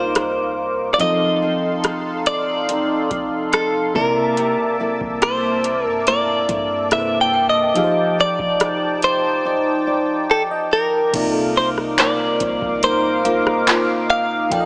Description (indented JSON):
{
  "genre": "contemporary R&B",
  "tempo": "71 BPM",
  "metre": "4/4",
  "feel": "straight",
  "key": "C dorian",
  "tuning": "A4 = 439 Hz",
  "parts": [
    { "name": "direct-recorded clean electric guitar", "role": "melody", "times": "0.0-14.7 s", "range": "A4 to G5", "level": "-18 LUFS", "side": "equal", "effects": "tape echo" },
    { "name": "FM electric piano with auto-pan", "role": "accompaniment", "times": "0.0-14.7 s", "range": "C3 to G5", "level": "-26 LUFS", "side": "equal", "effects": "none" },
    { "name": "warm analog pad", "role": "sustained chords", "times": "0.0-14.7 s", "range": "Bb3 to D6", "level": "-23 LUFS", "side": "equal", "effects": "chorus, sidechain pumping" },
    { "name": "nylon-string guitar", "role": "arpeggios", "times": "0.0-14.7 s", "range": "C3 to D5", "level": "-26 LUFS", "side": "equal", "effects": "none" },
    { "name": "clean 808-style bass", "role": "bass", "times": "0.0-14.7 s", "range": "F1 to C3", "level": "-35 LUFS", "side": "equal", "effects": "none" },
    { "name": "booming analog drum machine", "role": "drums", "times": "0.2-14.7 s", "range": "crash cymbal, handclaps, hi-hat, kick drum, rim click", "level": "-22 LUFS", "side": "equal", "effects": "none" },
    { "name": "synth chime", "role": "texture", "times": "5.2-14.7 s", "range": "C5 to D6", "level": "-31 LUFS", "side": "equal", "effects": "none" }
  ],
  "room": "light reverb",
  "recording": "small speaker sound",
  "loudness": "-16 LUFS",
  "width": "side -33 dB against mid",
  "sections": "0.0-11.1 A section; 11.1-14.7 B section",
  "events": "drums muted 9.4-11.1; FM electric piano fill 9.9-11.1",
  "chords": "0.0 Cm11; 1.0 F7; 4.0 C13; 7.8 F13; 11.1 Cm11"
}